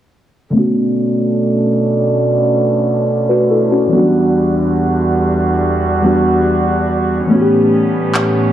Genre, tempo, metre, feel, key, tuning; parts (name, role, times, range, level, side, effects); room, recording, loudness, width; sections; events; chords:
contemporary R&B; 71 BPM; 4/4; straight; B minor; A4 = 440 Hz
muted felt-like synth keys; accompaniment; 0.5-8.5 s; D3 to B4; -14 LUFS; left 1 dB; chorus, low-pass filter
warm chamber string section; sustained chords; 0.5-8.5 s; E2 to F#4; -16 LUFS; right 2 dB; low-pass filter
electronic handclaps; drums; 8.1-8.3 s; -19 LUFS; equal
moderate spring reverb, RT60 2.1 s; echo-heavy mix, small room reverb; -12 LUFS; side -11 dB against mid
0.5-8.5 A section
filter sweep 0.5-8.5
0.5 Bm9; 3.9 Em9; 7.3 A9